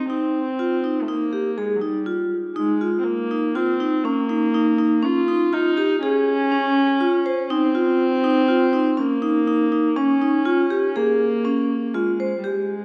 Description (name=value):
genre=contemporary instrumental, chamber music in an uneven meter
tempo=122 BPM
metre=5/4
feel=straight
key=Ab major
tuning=A4 = 440 Hz
part: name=warm viola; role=second line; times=0.0-12.8 s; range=Gb3 to F4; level=-25 LUFS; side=equal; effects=none
part: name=vibraphone with medium hard mallets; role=arpeggios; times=0.1-12.7 s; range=Db4 to C5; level=-23 LUFS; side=equal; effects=none
room=wet concert hall reverb, RT60 2.1 s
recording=none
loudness=-21 LUFS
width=mono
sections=0.0-2.6 A section; 2.6-12.4 B section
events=none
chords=0.1 Abmaj7 (rootless); 2.6 Ab69 (rootless); 5.0 Db; 7.5 Bbsus24; 10.0 Db